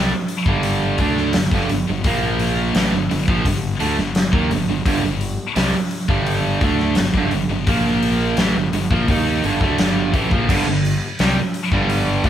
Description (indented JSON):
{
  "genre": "quiet-loud alternative rock",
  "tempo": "85 BPM",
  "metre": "4/4",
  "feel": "straight",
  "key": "G minor",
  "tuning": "A4 = 439 Hz",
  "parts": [
    { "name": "crunchy overdriven guitar", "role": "riff", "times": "0.0-12.3 s", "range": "G2 to Eb4", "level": "-22 LUFS", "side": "right 5 dB", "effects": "none" },
    { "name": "scooped high-gain guitar", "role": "riff", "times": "0.0-12.3 s", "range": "G2 to Eb4", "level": "-24 LUFS", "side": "left 6 dB", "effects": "distortion" },
    { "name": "fuzz fingered electric bass", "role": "bass", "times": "0.0-12.3 s", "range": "G1 to Eb2", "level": "-24 LUFS", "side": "left 1 dB", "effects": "overdrive" },
    { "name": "big rock drum kit", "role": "drums", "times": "0.3-12.3 s", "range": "crash cymbal, hi-hat, kick drum, snare drum", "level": "-20 LUFS", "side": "left 1 dB", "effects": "none" },
    { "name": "sludgy distorted guitar", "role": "riff", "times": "10.5-12.3 s", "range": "G2 to G3", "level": "-23 LUFS", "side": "equal", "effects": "overdrive" }
  ],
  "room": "moderate studio reverb, RT60 0.9 s",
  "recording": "band playing live in one room",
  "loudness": "-16 LUFS",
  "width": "side -10 dB against mid",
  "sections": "0.0-12.3 A section",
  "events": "none",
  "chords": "0.0 G5; 2.1 Bb5; 2.8 Gm; 7.7 Bb5; 8.4 Gm",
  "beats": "0.65 1.36 | 2.06 2.76 3.46 4.17 | 4.87 5.57 6.28 6.98 | 7.68 8.39 9.09 9.79 | 10.50 11.20 11.90"
}